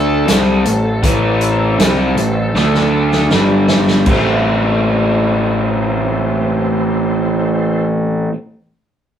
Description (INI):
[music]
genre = blues rock power trio and southern rock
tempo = 79 BPM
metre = 4/4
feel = straight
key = A minor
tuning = A4 = 440 Hz
[part]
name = overdriven slide guitar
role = melody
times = 0.0-3.3 s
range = A4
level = -23 LUFS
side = left 2 dB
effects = tape echo
[part]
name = overdriven tonewheel organ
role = sustained chords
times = 0.0-7.9 s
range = G3 to D5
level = -27 LUFS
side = right 2 dB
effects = none
[part]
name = raw garage guitar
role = riff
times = 0.0-8.3 s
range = G2 to E4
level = -16 LUFS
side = equal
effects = overdrive
[part]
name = fuzz picked electric bass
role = bass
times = 0.0-8.3 s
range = G1 to D2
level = -17 LUFS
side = equal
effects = overdrive
[part]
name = vintage drum kit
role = drums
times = 0.3-4.2 s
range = crash cymbal, hi-hat, kick drum, snare drum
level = -17 LUFS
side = right 1 dB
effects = none
[sound]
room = moderate studio reverb, RT60 0.6 s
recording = rough rehearsal-room recording, warm saturation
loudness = -12 LUFS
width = side -9 dB against mid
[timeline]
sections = 0.0-4.1 A section; 4.1-7.1 B section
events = drum fill 2.6-4.1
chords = 0.3 Am; 2.6 D5; 3.3 G5; 4.1 Am